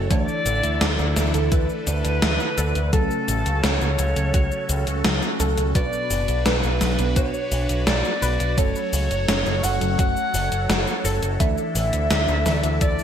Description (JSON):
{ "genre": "synthwave", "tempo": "85 BPM", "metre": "4/4", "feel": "straight", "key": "F# minor", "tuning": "A4 = 440 Hz", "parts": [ { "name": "phased analog pad", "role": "sustained chords", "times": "0.0-13.0 s", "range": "C#3 to C#5", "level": "-30 LUFS", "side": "equal", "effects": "phaser, chorus, sidechain pumping" }, { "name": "wide unison pluck", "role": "arpeggios", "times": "0.0-13.0 s", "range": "E3 to B4", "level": "-33 LUFS", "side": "left 3 dB", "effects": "ping-pong delay" }, { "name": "FM electric piano with soft pad layer", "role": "stabs", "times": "0.0-13.0 s", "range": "B2 to B4", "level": "-30 LUFS", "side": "right 2 dB", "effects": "chorus, phaser, vintage 12-bit sampler grit" }, { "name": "picked electric bass with an envelope filter", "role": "bass", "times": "0.0-13.0 s", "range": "F#1 to D2", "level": "-23 LUFS", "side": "equal", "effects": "sidechain pumping" }, { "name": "warm alto saxophone", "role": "melody", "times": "0.1-13.0 s", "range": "A4 to F#5", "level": "-27 LUFS", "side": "left 1 dB", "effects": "ping-pong delay" }, { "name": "soft synth bell", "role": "second line", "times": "0.1-13.0 s", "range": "A4 to F#5", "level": "-33 LUFS", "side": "right 2 dB", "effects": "none" }, { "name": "electronic kick drum", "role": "drums", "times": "0.1-13.0 s", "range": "none", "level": "-22 LUFS", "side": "equal", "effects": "overdrive" }, { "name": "gated 80s digital drum machine", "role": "drums", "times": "0.1-13.0 s", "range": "hi-hat, shaker, snare drum", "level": "-25 LUFS", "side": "equal", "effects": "gated reverb, gated reverb snare, overdrive" } ], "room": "light reverb, digital ambience", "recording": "bright 1980s-style digital production", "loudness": "-19 LUFS", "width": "side -9 dB against mid", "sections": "0.0-13.0 A section", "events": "none", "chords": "0.1 Dsus2; 2.9 F#m; 5.8 Bm; 8.6 F#m; 11.4 Dsus2", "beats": "| 0.11 0.81 1.52 2.22 | 2.93 3.63 4.34 5.05 | 5.75 6.46 7.16 7.87 | 8.58 9.28 9.99 10.69 | 11.40 12.11 12.81" }